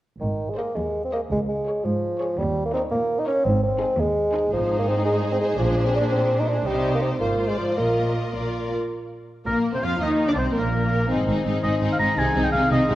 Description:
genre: classical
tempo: 111 BPM (dotted quarters)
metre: 6/8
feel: rubato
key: Ab major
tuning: A4 = 439 Hz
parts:
  - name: mellow bassoon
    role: accompaniment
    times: 0.2-8.3 s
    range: Eb3 to Eb4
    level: -23 LUFS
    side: equal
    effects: none
  - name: warm symphonic cello section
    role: bass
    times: 0.2-12.9 s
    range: Db2 to F3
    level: -28 LUFS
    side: right 1 dB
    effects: none
  - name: warm symphonic double bass section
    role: bass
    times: 0.2-12.9 s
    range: Ab1 to F2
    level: -28 LUFS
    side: right 1 dB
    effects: none
  - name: warm symphonic violin section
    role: melody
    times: 0.6-12.9 s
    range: Ab4 to F5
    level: -35 LUFS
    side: left 5 dB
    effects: none
  - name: warm symphonic violin section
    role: second line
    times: 0.6-12.9 s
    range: Bb3 to Db5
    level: -31 LUFS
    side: left 3 dB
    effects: none
  - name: warm symphonic viola section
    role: accompaniment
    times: 0.6-12.9 s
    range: Bb3 to Ab4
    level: -29 LUFS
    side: equal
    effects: none
  - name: warm oboe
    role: second line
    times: 9.5-12.9 s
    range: Bb4 to Bb5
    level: -25 LUFS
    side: equal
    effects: none
  - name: dark French horn section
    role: sustained chords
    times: 9.5-12.9 s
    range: Eb3 to C5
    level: -28 LUFS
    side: left 2 dB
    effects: none
room: moderate concert hall reverb, RT60 1.9 s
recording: worn, warbling old tape, cassette tape, warbly pitch drift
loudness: -20 LUFS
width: side -15 dB against mid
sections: 0.2-8.9 A section; 8.9-12.9 B section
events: none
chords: 0.2 Ab; 1.3 Db; 2.4 Eb5; 3.5 Ab; 5.6 Bb9; 6.7 Cm; 7.2 Fm/Ab; 7.8 Bbsus4; 8.9 Bbsus2; 10.0 Eb5; 11.1 Ab; 12.2 Ab/C

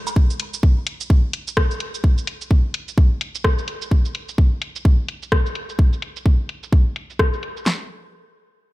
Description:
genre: techno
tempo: 128 BPM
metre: 4/4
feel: swing 60% on 16ths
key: none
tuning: none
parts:
  - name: house drum kit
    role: drums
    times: 0.1-7.6 s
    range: hi-hat, rim click, shaker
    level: -26 LUFS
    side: left 1 dB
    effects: low-pass filter on perc, studio reverb, low-pass filter on hats, low-pass filter on snare
  - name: house drum kit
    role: drums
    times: 0.2-7.8 s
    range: handclaps, kick drum, snare drum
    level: -15 LUFS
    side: equal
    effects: studio reverb
room: digital ambience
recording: none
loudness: -18 LUFS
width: side -19 dB against mid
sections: 0.0-7.7 A section; 7.7-8.7 B section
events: filter sweep on drum 0.0-7.7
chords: none

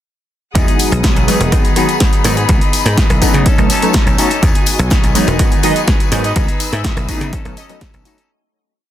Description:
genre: filtered disco house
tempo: 124 BPM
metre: 4/4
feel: straight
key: E major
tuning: A4 = 440 Hz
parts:
  - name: funky polysynth comp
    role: accompaniment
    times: 0.5-8.2 s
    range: D#3 to D#4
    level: -18 LUFS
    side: equal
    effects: chorus, phaser, cassette tape, sidechain pumping
  - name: semi-hollow electric guitar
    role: riff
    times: 0.5-8.3 s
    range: E3 to A4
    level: -22 LUFS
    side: left 2 dB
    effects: vintage 12-bit sampler grit, sidechain pumping
  - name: bright symphonic string section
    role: sustained chords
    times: 0.6-8.3 s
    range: E3 to E6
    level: -24 LUFS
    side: left 3 dB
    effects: vintage 12-bit sampler grit, sidechain pumping
  - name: dry thumbed slap bass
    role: bass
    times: 0.6-8.0 s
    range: E1 to C#3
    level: -17 LUFS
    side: equal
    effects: sidechain pumping
  - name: electronic kick drum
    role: drums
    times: 0.6-7.9 s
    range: none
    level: -14 LUFS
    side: equal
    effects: overdrive
  - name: punchy analog drum machine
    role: drums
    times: 0.6-8.3 s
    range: hi-hat, rim click, snare drum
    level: -20 LUFS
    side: right 1 dB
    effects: overdrive
  - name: tambourine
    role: percussion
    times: 0.6-8.3 s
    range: none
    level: -25 LUFS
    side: left 10 dB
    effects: sidechain pumping on perc
  - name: analog synth brass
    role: melody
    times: 5.6-7.8 s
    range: D#5 to E5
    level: -23 LUFS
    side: right 4 dB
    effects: chorus, sidechain pumping
room: digital ambience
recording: dense, heavily limited modern master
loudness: -11 LUFS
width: side -12 dB against mid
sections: 0.6-8.3 drop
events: drop 0.6-8.3; fade-out 5.7-8.3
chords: 0.6 Emaj9; 1.5 G#m7; 2.5 C#m9; 3.5 B9; 4.4 Emaj9; 5.4 G#m7; 6.4 C#m9; 7.3 B9

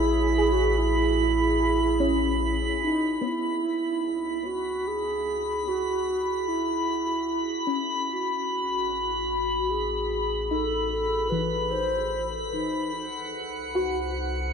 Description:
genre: ambient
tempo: 74 BPM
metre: 3/4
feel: straight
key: C# minor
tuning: A4 = 441 Hz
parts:
  - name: mellow hollow alto flute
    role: melody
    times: 0.0-12.9 s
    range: D#4 to B#4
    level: -27 LUFS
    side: right 2 dB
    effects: diffuse ambient delay
  - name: soft round pluck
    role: arpeggios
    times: 0.0-14.5 s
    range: E3 to G#4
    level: -32 LUFS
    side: left 1 dB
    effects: ensemble chorus, diffuse ambient delay
  - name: deep rumbling drone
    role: bass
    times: 0.0-14.5 s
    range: A1 to C#2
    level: -32 LUFS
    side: left 1 dB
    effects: built-in reverb, phaser
  - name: drifting glass-harmonics texture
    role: texture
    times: 0.0-14.5 s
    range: F#5 to B5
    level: -29 LUFS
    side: left 1 dB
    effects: chorus, built-in reverb
room: wet huge ambient reverb, RT60 8.7 s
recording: none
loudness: -24 LUFS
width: side -6 dB against mid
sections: 0.0-3.2 A section; 3.2-14.5 B section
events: fade-in on synth drone 3.2-14.5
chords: 0.0 Amaj7; 3.2 C#m7; 8.1 Asus2; 13.0 C

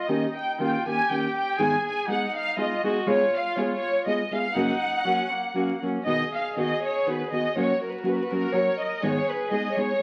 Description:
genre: mexican folk, mariachi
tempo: 122 BPM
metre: 3/4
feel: rubato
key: F# major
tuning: A4 = 439 Hz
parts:
  - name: dark symphonic violin section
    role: melody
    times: 0.0-10.0 s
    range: A#4 to G#5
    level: -28 LUFS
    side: equal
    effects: none
  - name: clear trumpet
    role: second line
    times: 0.0-10.0 s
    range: A#3 to A#4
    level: -35 LUFS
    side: equal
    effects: none
  - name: nylon-string guitar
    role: accompaniment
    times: 0.1-10.0 s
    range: F#2 to G#4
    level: -30 LUFS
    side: equal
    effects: none
room: moderate large studio reverb, RT60 1.2 s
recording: very old 78 rpm record, vinyl crackle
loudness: -26 LUFS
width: mono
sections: 0.0-6.1 A section; 6.1-10.0 B section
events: none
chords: 0.1 D#7; 1.6 G#m; 3.1 C#7; 4.5 F#; 6.1 B; 7.5 F#/A#; 9.0 G#m

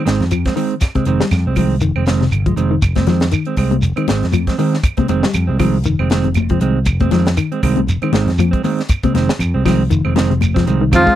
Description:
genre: afrobeat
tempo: 119 BPM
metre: 4/4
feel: swing 56% on 16ths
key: F minor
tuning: A4 = 440 Hz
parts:
  - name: semi-hollow electric guitar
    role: arpeggios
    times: 0.0-11.2 s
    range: C3 to Ab3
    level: -20 LUFS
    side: left 6 dB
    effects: none
  - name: mellow electric guitar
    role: stabs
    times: 0.0-11.2 s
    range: Eb3 to C4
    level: -19 LUFS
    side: right 7 dB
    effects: none
  - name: fingered electric bass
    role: bass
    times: 0.1-11.1 s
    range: F1 to F2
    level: -17 LUFS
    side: equal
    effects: none
  - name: tight funk drum kit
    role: drums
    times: 0.1-11.2 s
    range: hi-hat, kick drum, snare drum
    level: -20 LUFS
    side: equal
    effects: none
  - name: shekere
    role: percussion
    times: 0.1-11.1 s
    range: none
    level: -20 LUFS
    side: right 1 dB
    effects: none
  - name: claves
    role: percussion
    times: 0.3-11.1 s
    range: none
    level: -27 LUFS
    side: right 10 dB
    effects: none
  - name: congas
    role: percussion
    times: 2.8-11.1 s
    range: none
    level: -22 LUFS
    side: left 11 dB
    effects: none
  - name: brilliant trombone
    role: second line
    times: 10.9-11.2 s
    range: F3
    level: -18 LUFS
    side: right 3 dB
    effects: none
  - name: bright alto saxophone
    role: melody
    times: 11.0-11.2 s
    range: F4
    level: -10 LUFS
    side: left 1 dB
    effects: none
room: little or no reverb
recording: dry, close 1970s-style studio recording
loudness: -13 LUFS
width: side -12 dB against mid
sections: 0.0-10.9 A section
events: none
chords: 0.0 Fm7

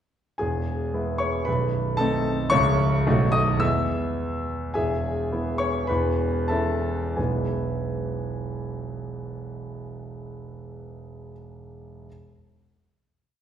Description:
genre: classical, virtuoso piano study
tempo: 86-116 BPM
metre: 2/4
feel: rubato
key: E major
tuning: A4 = 441 Hz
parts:
  - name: clear concert grand piano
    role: solo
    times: 0.4-12.1 s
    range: B0 to E6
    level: -24 LUFS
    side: equal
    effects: none
room: wet recital hall reverb, RT60 1.4 s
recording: heard from further back in the room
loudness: -22 LUFS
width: side -9 dB against mid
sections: 0.4-4.8 A section; 4.8-7.2 coda; 7.2-9.9 final chord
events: slowing down 4.2-7.2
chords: 0.4 E; 1.5 B7b9; 2.5 C#m; 3.1 B7; 3.6 E; 5.9 A/E; 7.2 E

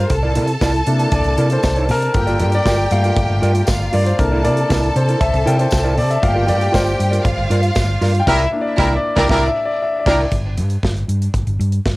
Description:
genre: disco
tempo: 118 BPM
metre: 4/4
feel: straight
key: unclear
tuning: A4 = 442 Hz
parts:
  - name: clear studio violin section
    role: second line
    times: 0.0-10.2 s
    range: D4 to A5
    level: -23 LUFS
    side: equal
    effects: tape echo
  - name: clear grand piano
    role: accompaniment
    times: 0.0-10.3 s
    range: A3 to G5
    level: -20 LUFS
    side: left 2 dB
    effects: none
  - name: mellow electric guitar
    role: accompaniment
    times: 0.0-10.2 s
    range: E4 to D5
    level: -22 LUFS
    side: right 2 dB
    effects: none
  - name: hollow-body short-scale fingered electric bass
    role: bass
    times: 0.0-12.0 s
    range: G1 to C3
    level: -18 LUFS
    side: equal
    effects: none
  - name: modern studio drum kit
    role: drums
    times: 0.1-12.0 s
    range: crash cymbal, hi-hat, kick drum, snare drum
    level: -21 LUFS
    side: equal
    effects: cassette tape
  - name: tambourine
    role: percussion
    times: 0.6-7.9 s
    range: none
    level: -34 LUFS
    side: left 2 dB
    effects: none
  - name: clear horn section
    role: stabs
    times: 8.3-10.2 s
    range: E4 to Bb4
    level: -19 LUFS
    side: equal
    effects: none
room: light reverb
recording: home recording on cassette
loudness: -14 LUFS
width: side -20 dB against mid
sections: 0.0-10.3 A section; 10.3-12.0 B section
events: grand piano solo 0.0-10.3; band accent 8.3-10.3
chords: 0.1 C9; 2.1 Gm7; 4.2 C9; 6.2 Gm7; 8.3 C9; 10.3 N.C.

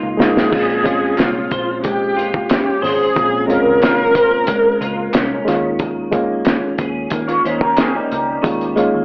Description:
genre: indie pop, bedroom pop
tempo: 91 BPM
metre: 4/4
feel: straight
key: Bb dorian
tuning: A4 = 443 Hz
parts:
  - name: clean electric guitar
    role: accompaniment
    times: 0.0-9.0 s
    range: Bb2 to C5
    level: -23 LUFS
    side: equal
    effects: ensemble chorus, warbly pitch drift
  - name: reed electric piano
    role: accompaniment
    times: 0.0-9.0 s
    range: Ab3 to F4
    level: -20 LUFS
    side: equal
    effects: cassette tape
  - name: vintage muted picked electric bass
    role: bass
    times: 0.0-9.0 s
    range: G1 to Eb3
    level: -31 LUFS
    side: equal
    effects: none
  - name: warm viola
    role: melody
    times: 0.2-5.4 s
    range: F4 to Bb4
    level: -16 LUFS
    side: equal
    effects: ensemble chorus, analog delay
  - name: cloth-damped thuddy drum kit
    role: drums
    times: 0.2-8.9 s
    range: crash cymbal, hi-hat, kick drum, snare drum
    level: -19 LUFS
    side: equal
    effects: none
  - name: group handclap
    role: percussion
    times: 1.2-7.9 s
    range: none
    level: -30 LUFS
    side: equal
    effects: none
  - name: electric guitar through a small old amp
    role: second line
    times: 7.3-8.9 s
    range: G3 to Db5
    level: -18 LUFS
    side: equal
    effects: ensemble chorus, analog delay
room: wet small room reverb, RT60 0.6 s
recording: cassette tape, AM radio sound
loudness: -14 LUFS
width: side -31 dB against mid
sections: 0.5-9.0 A section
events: drum fill 0.0-0.5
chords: 0.0 Db6; 0.5 Bbm9; 5.5 Eb7sus4

